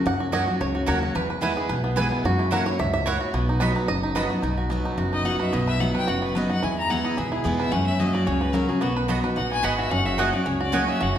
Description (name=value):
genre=bluegrass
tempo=219 BPM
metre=4/4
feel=swing 54% on 8ths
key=B major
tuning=A4 = 440 Hz
part: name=bluegrass banjo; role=melody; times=0.0-11.2 s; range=B3 to F#5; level=-27 LUFS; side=right 2 dB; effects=none
part: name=picked steel-string acoustic guitar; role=accompaniment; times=0.0-11.2 s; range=E2 to F#4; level=-26 LUFS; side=left 1 dB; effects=none
part: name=upright bass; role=bass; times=0.1-11.2 s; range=F#1 to F#2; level=-28 LUFS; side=equal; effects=none
part: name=mandolin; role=stabs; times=0.3-4.3, 9.1-10.8 s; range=A#3 to B5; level=-28 LUFS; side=right 4 dB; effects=none
part: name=clear fiddle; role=second line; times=5.1-11.2 s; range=F#4 to A#5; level=-28 LUFS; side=left 3 dB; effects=none
room=wet recital hall reverb, RT60 1.5 s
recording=recorded in a church or concert hall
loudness=-21 LUFS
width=side -10 dB against mid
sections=0.0-4.4 A section; 4.4-11.2 A section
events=five-string banjo solo 0.0-4.4; fiddle solo 4.4-11.2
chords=0.0 F#; 1.2 E; 2.2 F#7; 3.3 B; 6.6 E; 7.7 F#; 8.8 B; 9.9 F#